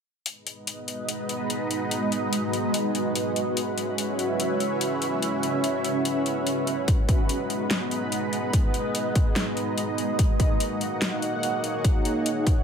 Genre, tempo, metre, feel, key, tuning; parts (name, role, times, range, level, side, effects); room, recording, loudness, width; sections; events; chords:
heavy wobble dubstep; 145 BPM; 4/4; swing 54% on 16ths, half-time; G# minor; A4 = 440 Hz
lush unison pad; sustained chords; 0.3-12.6 s; G#3 to F#5; -28 LUFS; right 1 dB; chorus, phaser, sidechain pumping
dubstep drum kit; drums; 0.3-12.6 s; hi-hat, snare drum; -30 LUFS; left 3 dB; small room ambience
granular cloud pad; texture; 1.0-12.6 s; G#3 to F#5; -28 LUFS; right 1 dB; built-in reverb, sidechain pumping
electronic kick drum; drums; 6.9-12.6 s; -21 LUFS; equal; small room ambience
moderate plate reverb, RT60 1.4 s; -23 LUFS; side -7 dB against mid
0.3-12.6 A section
0.3 G#m; 3.6 C#m; 6.9 G#m; 10.2 D#m